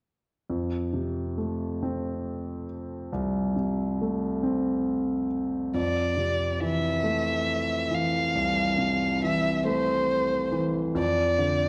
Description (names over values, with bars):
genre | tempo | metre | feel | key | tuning
pop | 46 BPM (dotted quarters) | 6/8 | straight | F major | A4 = 439 Hz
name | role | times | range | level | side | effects
warm concert grand piano | accompaniment | 0.5-11.7 s | C2 to C4 | -29 LUFS | equal | none
dark violin | melody | 5.8-11.7 s | C5 to F5 | -28 LUFS | equal | none
room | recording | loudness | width
wet recital hall reverb, RT60 1.7 s | worn, warbling old tape, cassette tape, warbly pitch drift | -27 LUFS | mono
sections
0.5-5.7 A section; 5.7-11.7 B section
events
none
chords
0.5 F; 5.7 Fmaj7; 11.0 Dm/F